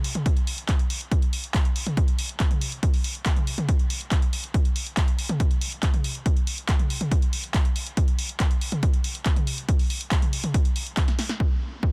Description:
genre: trance.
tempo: 140 BPM.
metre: 4/4.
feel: straight.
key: none.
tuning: none.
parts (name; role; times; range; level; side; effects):
punchy analog drum machine; drums; 0.0-11.5 s; crash cymbal, handclaps, hi-hat, snare drum, toms; -32 LUFS; equal; low-pass filter on hats, low-pass filter on snare, low-pass filter on toms, low-pass filter on cymbals.
electronic kick drum; drums; 0.3-11.9 s; none; -25 LUFS; equal; none.
room: little or no reverb.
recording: dense, heavily limited modern master.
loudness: -24 LUFS.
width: mono.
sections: 0.0-11.4 A section.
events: drum fill 11.1-11.4; band accent 11.3.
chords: none.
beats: 0.26 0.69 | 1.12 1.54 1.97 2.40 | 2.83 3.26 3.69 4.12 | 4.54 4.97 5.40 5.83 | 6.26 6.69 7.12 7.54 | 7.97 8.40 8.83 9.26 | 9.69 10.12 10.54 10.97 | 11.40 11.83.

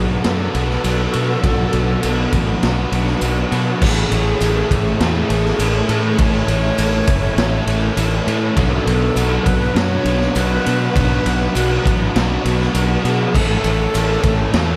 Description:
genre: rock, shoegaze and dream pop.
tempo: 101 BPM.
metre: 4/4.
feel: straight.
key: A major.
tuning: A4 = 440 Hz.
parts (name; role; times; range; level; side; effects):
breathy alto flute; melody; 0.0-14.8 s; F#4 to C#5; -27 LUFS; equal; tape echo.
string machine, cellos; sustained chords; 0.0-14.8 s; A3 to D6; -30 LUFS; equal; none.
overdriven semi-hollow guitar; riff; 0.0-14.8 s; A2 to A4; -27 LUFS; equal; ensemble chorus.
overdriven semi-hollow guitar; riff; 0.0-14.8 s; A2 to A4; -26 LUFS; equal; reverse reverb.
overdriven semi-hollow guitar; riff; 0.0-14.8 s; A2 to B3; -30 LUFS; equal; none.
fuzz fingered electric bass; bass; 0.0-14.7 s; F#1 to B2; -22 LUFS; equal; overdrive.
raw garage drum kit; drums; 0.2-14.7 s; crash cymbal, kick drum, ride cymbal, snare drum; -23 LUFS; equal; none.
tambourine; percussion; 0.8-14.1 s; none; -38 LUFS; equal; none.
room: moderate lush hall reverb, RT60 2.2 s.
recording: dreamy mix soaked in reverb.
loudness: -17 LUFS.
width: mono.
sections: 0.0-3.8 A section; 3.8-14.8 A section.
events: none.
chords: 0.0 Bm7; 3.8 Amaj7; 8.6 Bm; 13.3 Amaj7.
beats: 0.24 0.84 | 1.43 2.03 2.62 3.22 | 3.81 4.41 5.00 5.60 | 6.19 6.79 7.38 7.98 | 8.57 9.17 9.76 10.36 | 10.95 11.55 12.14 12.74 | 13.34 13.93 14.53.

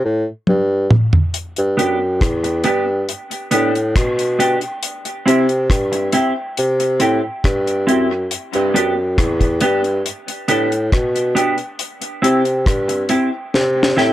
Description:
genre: dub reggae.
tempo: 69 BPM.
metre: 4/4.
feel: straight.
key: G major.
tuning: A4 = 440 Hz.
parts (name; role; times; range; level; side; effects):
dark bassoon; bass; 0.1-14.1 s; E2 to C3; -17 LUFS; equal; none.
deep reggae drum kit; drums; 0.5-14.1 s; hi-hat, kick drum, rim click, snare drum, toms; -18 LUFS; equal; none.
mellow electric guitar; accompaniment; 1.8-14.1 s; B3 to G4; -19 LUFS; right 1 dB; lush chorus, dub echo.
room: light reverb, small room ambience.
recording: none.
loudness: -15 LUFS.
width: side -14 dB against mid.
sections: 0.0-1.3 A section; 1.3-14.1 B section.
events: break 0.0-1.3; drum fill 0.5-1.3, 13.5-14.1.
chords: 0.0 N.C.; 1.3 G; 4.8 C; 8.3 G; 11.8 C.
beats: 0.47 | 1.34 2.21 3.08 3.95 | 4.83 5.70 6.57 7.44 | 8.31 9.18 10.05 10.92 | 11.79 12.66 13.53.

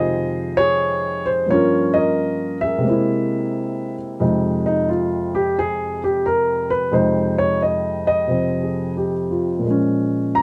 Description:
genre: solo jazz.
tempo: 88 BPM.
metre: 4/4.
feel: swing 67% on 8ths.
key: F minor.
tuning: A4 = 440 Hz.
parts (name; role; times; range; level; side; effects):
dark upright piano; solo; 0.0-10.4 s; F2 to Bb5; -20 LUFS; equal; none.
room: light reverb.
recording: none.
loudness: -20 LUFS.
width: mono.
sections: 0.0-4.2 A section; 4.2-10.4 B section.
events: upright piano solo 4.2-10.4.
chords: 0.0 Fm7; 1.5 Gm7b5; 2.8 Caug7; 4.2 Fm7; 9.6 Bbm7.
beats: 0.12 0.80 | 1.48 2.16 2.84 3.52 | 4.20 4.88 5.56 6.24 | 6.92 7.60 8.28 8.96 | 9.64 10.32.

